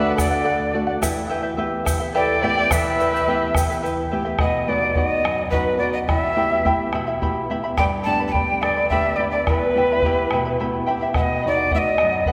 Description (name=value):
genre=andean folk, Andean ensemble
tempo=71 BPM (dotted quarters)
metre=6/8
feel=straight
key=E minor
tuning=A4 = 440 Hz
part: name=breathy quena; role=melody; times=0.0-12.3 s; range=B4 to A5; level=-24 LUFS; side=equal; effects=none
part: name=warm violin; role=second line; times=0.0-3.8 s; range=A4 to D5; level=-29 LUFS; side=equal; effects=none
part: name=charango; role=accompaniment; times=0.0-12.3 s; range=E4 to B5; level=-27 LUFS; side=equal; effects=none
part: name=flamenco guitar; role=accompaniment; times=0.0-12.3 s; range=E2 to G4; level=-29 LUFS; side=equal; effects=none
part: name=bombo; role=percussion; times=0.2-12.3 s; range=none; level=-28 LUFS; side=equal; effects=none
part: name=tube shaker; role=percussion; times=0.2-3.9 s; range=none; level=-35 LUFS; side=equal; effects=none
room=wet church reverb, RT60 2.9 s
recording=recorded in a church or concert hall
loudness=-21 LUFS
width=mono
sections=0.0-4.4 A section; 4.4-12.3 B section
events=none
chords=0.0 D; 1.0 Em; 4.4 B; 6.1 Em; 7.8 G; 9.5 Em; 11.2 B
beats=0.19 | 1.03 1.87 | 2.72 3.56 | 4.40 5.25 | 6.09 6.93 | 7.78 8.62 | 9.47 10.31 | 11.16 12.00